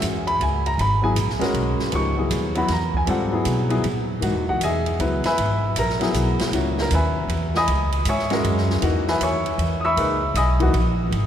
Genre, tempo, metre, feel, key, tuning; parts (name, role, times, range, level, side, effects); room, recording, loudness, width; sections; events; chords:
modal jazz; 157 BPM; 3/4; swing 65% on 8ths; C# dorian; A4 = 440 Hz
warm baby grand piano; accompaniment; 0.0-11.0 s; A#2 to E6; -21 LUFS; left 1 dB
upright bass; bass; 0.0-11.3 s; G#1 to B2; -23 LUFS; equal
open jazz drum kit; drums; 0.0-11.2 s; hi-hat, kick drum, ride cymbal, snare drum; -30 LUFS; right 3 dB
wet cathedral reverb, RT60 5.3 s; recorded in a church or concert hall; -19 LUFS; side -9 dB against mid
0.0-11.3 A section
0.0 C#m9